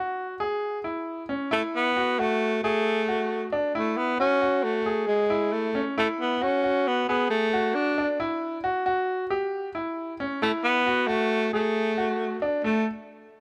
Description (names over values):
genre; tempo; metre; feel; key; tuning
progressive instrumental, progressive; 135 BPM; 5/4; straight; unclear; A4 = 440 Hz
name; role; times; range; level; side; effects
bright grand piano; arpeggios; 0.0-12.8 s; A3 to G#4; -30 LUFS; equal; none
breathy tenor saxophone; melody; 1.5-12.9 s; G#3 to D4; -26 LUFS; equal; none
room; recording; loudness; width
moderate plate reverb, RT60 2.7 s; none; -26 LUFS; mono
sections
0.0-12.6 A section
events
none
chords
0.0 C#madd11; 1.5 D (rootless); 3.7 C#m; 6.0 D (rootless); 8.2 C#madd11 (rootless); 10.4 D (rootless); 12.6 N.C.